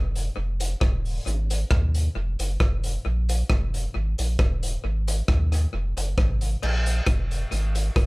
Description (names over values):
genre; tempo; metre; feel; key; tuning
ska; 134 BPM; 4/4; straight; unclear; A4 = 440 Hz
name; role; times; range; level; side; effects
warm sub bass; bass; 0.0-8.1 s; Eb1 to Eb2; -24 LUFS; equal; none
raw garage drum kit; drums; 0.2-8.1 s; crash cymbal, hi-hat, kick drum, rim click; -25 LUFS; equal; analog delay
room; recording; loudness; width
little or no reverb; none; -22 LUFS; side -26 dB against mid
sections
0.0-6.6 A section; 6.6-8.1 B section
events
none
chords
none